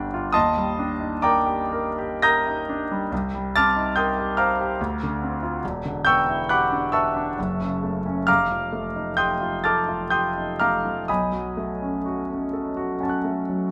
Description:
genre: classical, impressionist solo piano.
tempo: 55-72 BPM.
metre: 3/4.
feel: rubato.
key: unclear.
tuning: A4 = 440 Hz.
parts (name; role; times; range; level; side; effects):
clear concert grand piano; solo; 0.0-13.7 s; E1 to Bb6; -23 LUFS; equal; none.
room: light reverb.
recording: none.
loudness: -23 LUFS.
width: mono.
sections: 0.0-13.7 A section.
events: none.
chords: 0.3 Ebmaj7; 3.1 Cm7; 4.8 Dm7; 5.6 Em7; 7.4 Gbm7; 8.3 F9; 11.1 B9.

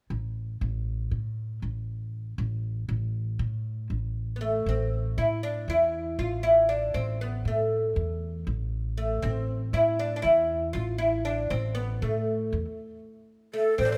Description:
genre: Turkish makam ensemble.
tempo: 237 BPM (eighths).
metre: 9/8.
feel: straight.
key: A makam nihavent.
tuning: A4 = 441 Hz.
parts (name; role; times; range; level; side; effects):
upright bass; bass; 0.1-14.0 s; A1 to A2; -33 LUFS; equal; none.
oud; melody; 4.4-14.0 s; A3 to F4; -28 LUFS; equal; none.
breathy bright ney; second line; 13.5-14.0 s; A4 to C5; -28 LUFS; equal; none.
room: light reverb.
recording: none.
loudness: -28 LUFS.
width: mono.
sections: 0.1-4.7 A section; 4.7-13.8 B section.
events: break 12.7-13.8.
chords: none.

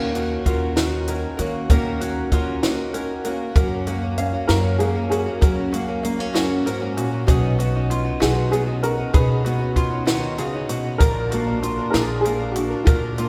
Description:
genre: indie folk with a building arrangement.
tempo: 64 BPM (dotted quarters).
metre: 6/8.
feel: straight.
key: unclear.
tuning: A4 = 440 Hz.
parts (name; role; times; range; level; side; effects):
fingerpicked steel-string acoustic guitar; accompaniment; 0.0-13.3 s; Eb2 to Gb4; -30 LUFS; equal; none.
picked twelve-string acoustic guitar; accompaniment; 0.0-13.3 s; Gb2 to Bb4; -30 LUFS; equal; none.
open-back banjo; arpeggios; 0.0-13.3 s; F4 to F5; -32 LUFS; equal; none.
upright bass; bass; 0.0-13.3 s; Bb1 to Gb3; -27 LUFS; equal; none.
compact cocktail drum kit; drums; 0.1-13.3 s; hi-hat, kick drum, snare drum; -24 LUFS; equal; none.
dark upright piano; melody; 3.6-13.3 s; F4 to B4; -28 LUFS; equal; none.
room: moderate cathedral reverb, RT60 4.0 s.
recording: recorded in a church or concert hall.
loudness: -21 LUFS.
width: mono.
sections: 0.0-3.6 A section; 3.6-13.3 B section.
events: none.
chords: 0.0 Ebm7; 3.6 Gb; 7.3 Badd9; 11.0 Bb.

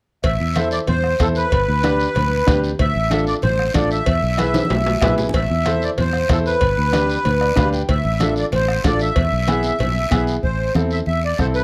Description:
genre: latin, cumbia.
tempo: 188 BPM.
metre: 4/4.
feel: straight.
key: A minor.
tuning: A4 = 439 Hz.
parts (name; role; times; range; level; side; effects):
accordion; melody; 0.2-11.6 s; A4 to E5; -24 LUFS; equal; light tremolo tuning.
fingered electric bass; bass; 0.2-11.6 s; G1 to E2; -24 LUFS; equal; none.
bombo; percussion; 0.2-11.6 s; none; -25 LUFS; equal; none.
congas; percussion; 0.2-11.6 s; none; -30 LUFS; equal; none.
cowbell and timbales; percussion; 0.2-10.3 s; none; -28 LUFS; equal; none.
guiro; percussion; 0.2-11.6 s; none; -37 LUFS; equal; none.
clear upright piano; accompaniment; 0.6-11.6 s; B3 to G#5; -26 LUFS; equal; none.
room: small room reverb.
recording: dry, close 1970s-style studio recording.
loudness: -18 LUFS.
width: mono.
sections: 0.2-10.4 A section; 10.4-11.6 B section.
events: drum fill 4.5-5.3; upright piano fill 4.9-5.3, 7.3-7.9.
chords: 0.2 Am; 1.5 G; 2.8 Dm; 4.1 E; 5.3 Am; 6.6 G; 7.9 Dm; 9.2 E; 10.4 Am.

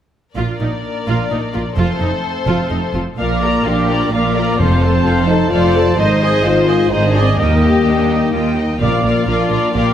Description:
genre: cinematic.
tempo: 128 BPM.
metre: 3/4.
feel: straight.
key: Bb major.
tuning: A4 = 440 Hz.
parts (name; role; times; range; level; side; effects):
warm studio violin section; melody; 0.4-9.9 s; F4 to D5; -25 LUFS; left 6 dB; none.
rich symphonic violin section; second line; 0.4-9.9 s; A4 to Bb5; -23 LUFS; left 1 dB; none.
warm symphonic viola section; accompaniment; 0.4-9.9 s; D4 to Eb5; -22 LUFS; equal; none.
mellow French horn section; sustained chords; 0.4-9.9 s; A3 to F4; -20 LUFS; left 5 dB; none.
rich chamber double bass section; bass; 0.4-9.8 s; F1 to Eb2; -20 LUFS; right 2 dB; none.
rich studio cello section; bass; 0.4-9.8 s; Eb2 to Bb2; -21 LUFS; right 2 dB; none.
warm trombone section; sustained chords; 3.2-9.9 s; Eb3 to Bb3; -23 LUFS; right 3 dB; none.
mellow trumpet section; stabs; 3.2-9.9 s; C5 to Eb5; -21 LUFS; right 1 dB; none.
timpani; percussion; 4.6-5.2, 8.8-9.5 s; F2 to Bb2; -22 LUFS; equal; none.
room: wet scoring stage reverb, RT60 1.8 s.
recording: none.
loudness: -13 LUFS.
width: side -10 dB against mid.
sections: 0.4-3.2 A section; 3.2-9.9 B section.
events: none.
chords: 0.4 Bb; 1.8 F; 3.2 Bb; 4.6 F; 6.0 Ab; 7.4 Eb; 8.8 Bb.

